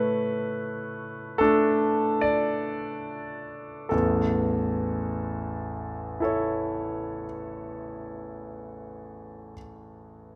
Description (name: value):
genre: classical, romantic nocturne for solo piano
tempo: 23-32 BPM (dotted quarters)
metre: 9/8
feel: rubato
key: A major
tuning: A4 = 440 Hz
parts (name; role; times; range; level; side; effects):
- bright grand piano; solo; 0.0-10.4 s; A1 to D5; -28 LUFS; equal; none
room: wet recital hall reverb, RT60 1.7 s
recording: none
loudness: -27 LUFS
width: mono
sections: 0.0-3.9 A section; 3.9-10.4 B section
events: slowing down 0.0-3.9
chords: 0.0 D5/A; 3.9 A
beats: 1.40 | 3.91 6.20 8.55